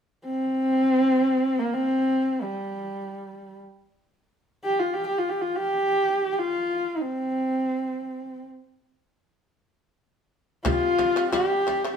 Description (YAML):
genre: mongolian traditional, Mongolian folk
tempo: free time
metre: none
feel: none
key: unclear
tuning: A4 = 441 Hz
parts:
  - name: dark horsehead fiddle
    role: melody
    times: 0.3-12.0 s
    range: G3 to G4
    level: -23 LUFS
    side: equal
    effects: none
  - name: shamisen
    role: arpeggios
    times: 10.6-12.0 s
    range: C3 to G3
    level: -29 LUFS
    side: left 4 dB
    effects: none
  - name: frame drum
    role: percussion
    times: 10.7-11.8 s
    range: none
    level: -29 LUFS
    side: right 1 dB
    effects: none
room: wet stone room reverb, RT60 1.0 s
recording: band playing live in one room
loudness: -22 LUFS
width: side -7 dB against mid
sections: 0.0-10.7 A section; 10.7-12.0 B section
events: none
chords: 0.0 N.C.; 10.7 C5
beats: free time